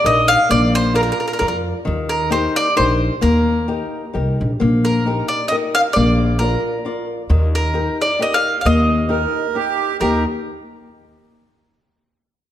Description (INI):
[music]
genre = italian folk, Italian serenade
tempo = 133 BPM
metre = 3/4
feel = swing 54% on 8ths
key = Eb major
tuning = A4 = 442 Hz
[part]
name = mandolin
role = melody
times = 0.0-10.2 s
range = Bb4 to F5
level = -18 LUFS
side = equal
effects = none
[part]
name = flamenco guitar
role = accompaniment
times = 0.0-10.2 s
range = Eb3 to D5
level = -20 LUFS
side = left 3 dB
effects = none
[part]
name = upright bass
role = bass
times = 0.0-10.2 s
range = Bb1 to F2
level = -19 LUFS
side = equal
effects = none
[part]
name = accordion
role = second line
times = 9.1-10.2 s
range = G4 to Bb4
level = -22 LUFS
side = right 9 dB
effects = none
[sound]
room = wet recital hall reverb, RT60 1.8 s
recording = lossy compression artefacts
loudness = -15 LUFS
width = side -11 dB against mid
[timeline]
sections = 0.0-4.6 A section; 4.6-10.0 B section; 10.0-11.4 C section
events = none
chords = 0.0 Eb/Bb; 0.5 Bb; 1.9 Eb; 4.6 Eb/Bb; 6.0 Bb; 7.3 Eb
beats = 0.05 | 0.50 0.96 1.41 | 1.87 2.32 2.77 | 3.23 3.68 4.14 | 4.59 5.05 5.50 | 5.95 6.40 6.85 | 7.30 7.75 8.20 | 8.65 9.10 9.55 | 10.01